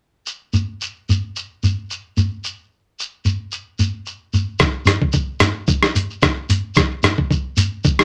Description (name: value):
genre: highlife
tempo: 111 BPM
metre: 4/4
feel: swing 55% on 16ths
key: none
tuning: none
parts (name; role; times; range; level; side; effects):
- shekere; percussion; 0.3-8.0 s; none; -22 LUFS; equal; none
- lo-fi sampler-style drum kit; drums; 4.6-8.0 s; hi-hat, kick drum, rim click; -18 LUFS; equal; overdrive
room: wet club reverb, RT60 0.6 s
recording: none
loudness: -20 LUFS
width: mono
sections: 0.3-4.6 A section; 4.6-8.0 B section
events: none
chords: none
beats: | 0.26 0.80 1.34 1.89 | 2.43 2.97 3.52 4.06 | 4.60 5.14 5.69 6.23 | 6.77 7.31 7.85